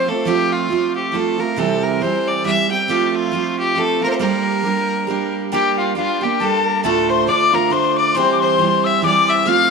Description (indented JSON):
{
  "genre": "celtic folk",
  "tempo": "137 BPM",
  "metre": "3/4",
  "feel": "swing 57% on 8ths",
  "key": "G dorian",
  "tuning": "A4 = 442 Hz",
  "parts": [
    { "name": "bright fiddle", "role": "melody", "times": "0.0-9.7 s", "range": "F4 to G5", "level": "-19 LUFS", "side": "left 3 dB", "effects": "tape echo" },
    { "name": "picked steel-string acoustic guitar", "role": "accompaniment", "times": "0.0-9.7 s", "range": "D2 to G4", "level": "-19 LUFS", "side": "right 10 dB", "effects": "none" },
    { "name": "bright wooden whistle", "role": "second line", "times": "5.5-9.7 s", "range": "F5 to F6", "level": "-18 LUFS", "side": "left 13 dB", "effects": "none" }
  ],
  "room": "moderate plate reverb, RT60 3.6 s",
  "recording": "1960s-style stereo with parts hard left and right",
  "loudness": "-15 LUFS",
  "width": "side -4 dB against mid",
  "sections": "0.0-5.5 A section; 5.5-9.7 A section",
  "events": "none",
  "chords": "0.0 F; 1.6 C; 2.9 F; 4.2 Gm; 6.8 Dm; 8.2 C/E"
}